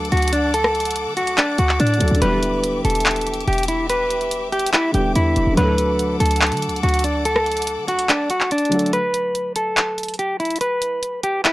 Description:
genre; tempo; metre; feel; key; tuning
hip hop, trap; 143 BPM; 4/4; half-time; unclear; A4 = 438 Hz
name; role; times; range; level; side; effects
clean electric guitar; melody; 0.0-11.5 s; D4 to B4; -20 LUFS; equal; low-pass filter
dark grand piano; accompaniment; 0.0-9.0 s; D3 to A4; -26 LUFS; equal; low-pass filter
bright studio string section; sustained chords; 0.0-8.9 s; G4 to D6; -30 LUFS; left 3 dB; none
short 808-style bass; bass; 0.0-8.1 s; E1 to D3; -22 LUFS; equal; none
trap drum kit; drums; 0.1-11.5 s; handclaps, hi-hat, rim click; -21 LUFS; equal; none
sync-sweep polysynth; stabs; 2.2-2.4, 5.6-5.8 s; A2 to G3; -28 LUFS; equal; chorus, analog delay
room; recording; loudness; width
little or no reverb; dry, gritty hardware recording; -17 LUFS; side -17 dB against mid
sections
0.0-8.9 A section; 8.9-11.5 B section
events
kick muted 8.1-8.9; break 8.9-11.5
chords
0.0 D; 2.2 Em7; 5.6 D; 8.9 N.C.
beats
0.12 | 0.54 0.96 1.38 1.80 | 2.22 2.64 3.06 3.48 | 3.90 4.32 4.74 5.15 | 5.57 5.99 6.41 6.83 | 7.25 7.67 8.09 8.51 | 8.93 9.35 9.77 10.19 | 10.61 11.03 11.45

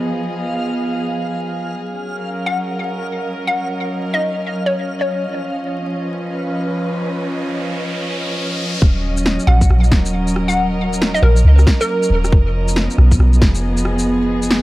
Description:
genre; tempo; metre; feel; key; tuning
future garage; 137 BPM; 4/4; swing 62% on 16ths; Eb minor; A4 = 439 Hz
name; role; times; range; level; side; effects
dark chamber string section; sustained chords; 0.0-14.6 s; F3 to Eb5; -21 LUFS; equal; sidechain pumping
backwards swelling texture; texture; 0.0-8.8 s; F5; -31 LUFS; right 3 dB; built-in reverb
hollow square pluck; melody; 2.5-5.4, 9.5-12.2 s; Bb4 to Gb5; -21 LUFS; left 1 dB; chorus, tape echo
riser; sound effects; 6.4-8.8 s; none; -28 LUFS; equal; none
soft 808-style bass; bass; 8.8-14.6 s; Eb1 to Db2; -14 LUFS; equal; sidechain pumping
electronic kick drum; drums; 8.8-13.5 s; none; -13 LUFS; equal; overdrive
electronic shaker, snare drum and rim click; drums; 9.2-14.6 s; none; -21 LUFS; equal; overdrive, low-pass filter on cymbals, low-pass filter on perc, low-pass filter on snare
room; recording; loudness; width
light reverb, digital ambience; echo-heavy mix, vinyl crackle; -15 LUFS; side -18 dB against mid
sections
0.0-8.8 A section; 8.8-14.6 B section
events
riser 6.4-8.8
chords
0.0 Fm7b5; 1.8 Ebm7; 5.3 Db9; 8.8 Ebm7; 12.3 Fm7b5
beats
| 0.06 0.50 0.94 1.37 | 1.81 2.25 2.69 3.13 | 3.56 4.00 4.44 4.88 | 5.32 5.75 6.19 6.63 | 7.07 7.51 7.94 8.38 | 8.82 9.26 9.70 10.13 | 10.57 11.01 11.45 11.88 | 12.32 12.76 13.20 13.64 | 14.07 14.51

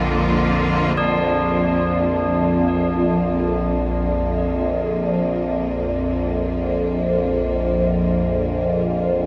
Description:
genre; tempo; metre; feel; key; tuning
dark ambient drone; free time; none; none; Bb major; A4 = 441 Hz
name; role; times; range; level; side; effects
rich studio cello section; sustained chords; 0.0-9.3 s; D3 to F4; -28 LUFS; equal; none
overtone-sweeping drone; drone; 0.0-9.3 s; Bb1 to F2; -22 LUFS; equal; chorus, built-in reverb, phaser
tubular bells; arpeggios; 1.0-9.3 s; D4; -28 LUFS; equal; delay
room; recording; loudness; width
wet huge ambient reverb, RT60 8.3 s; none; -20 LUFS; mono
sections
1.0-9.3 A section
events
fade-in on cello section 1.0-9.3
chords
0.0 Bb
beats
free time

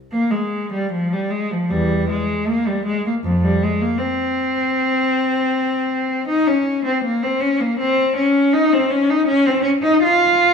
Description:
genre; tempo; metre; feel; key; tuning
classical, baroque-style suite movement for unaccompanied cello; 79 BPM; 4/4; rubato; F minor; A4 = 440 Hz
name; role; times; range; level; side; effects
warm cello; solo; 0.1-10.5 s; E2 to F4; -16 LUFS; left 1 dB; none
room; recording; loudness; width
moderate recital hall reverb, RT60 1.6 s; minimal, uncompressed stereo recording; -16 LUFS; side -6 dB against mid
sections
0.1-10.5 A section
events
none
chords
none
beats
| 0.12 0.91 1.70 2.48 | 3.25 4.00 4.76 5.53 | 6.29 7.03 7.79 8.54 | 9.29 10.04

